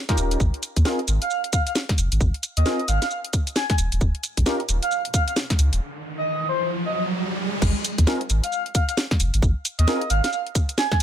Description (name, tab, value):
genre	UK garage, two-step garage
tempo	133 BPM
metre	4/4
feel	swing 61% on 16ths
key	Ab major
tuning	A4 = 444 Hz
part	percussive organ stab	stabs	0.1-4.6, 8.1-10.0 s	C4 to Bb4	-28 LUFS	equal	ensemble chorus, dub echo
part	electronic kick drum	drums	0.1-11.0 s	none	-22 LUFS	equal	none
part	garage drum kit	drums	0.1-11.0 s	crash cymbal, hi-hat, shaker, snare drum	-25 LUFS	equal	none
part	soft dub sub bass	bass	0.2-11.0 s	Eb1 to Eb2	-20 LUFS	equal	tube saturation, sidechain pumping
part	breathy flute-like synth lead	melody	1.2-11.0 s	C5 to Ab5	-26 LUFS	right 1 dB	wide subtle chorus, dub echo
part	riser	sound effects	5.6-7.6 s	none	-29 LUFS	right 1 dB	none
room	light reverb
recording	none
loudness	-20 LUFS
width	side -10 dB against mid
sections	0.0-7.6 A section; 7.6-11.0 B section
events	riser 5.6-7.6; break 5.8-7.6; drop 7.6-11.0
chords	0.4 Ab69; 3.8 Eb9; 7.6 Ab69